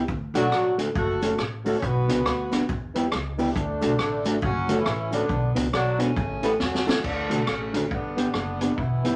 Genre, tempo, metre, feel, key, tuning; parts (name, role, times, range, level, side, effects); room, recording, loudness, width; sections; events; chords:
ska; 138 BPM; 4/4; swing 61% on 8ths; D major; A4 = 440 Hz
mellow electric guitar; accompaniment; 0.0-9.2 s; A3 to A4; -30 LUFS; equal
dark upright piano; stabs; 0.0-9.2 s; A3 to B4; -33 LUFS; equal
upright bass; bass; 0.1-9.2 s; E1 to E2; -32 LUFS; equal
vintage drum kit; drums; 0.1-9.1 s; crash cymbal, hi-hat, kick drum, rim click, snare drum; -32 LUFS; equal
cabasa; percussion; 0.1-7.0 s; -60 LUFS; equal
mellow horn section; melody; 0.4-9.2 s; C#3 to C#5; -30 LUFS; equal
wet studio reverb, RT60 0.6 s; -25 LUFS; mono
0.0-7.0 A section; 7.0-9.2 B section
drum fill 6.6-7.0
0.1 D; 1.0 F#m; 1.8 Bm; 2.7 Em; 3.6 D; 4.4 F#m; 5.3 Bm; 6.2 A; 7.0 D; 7.9 G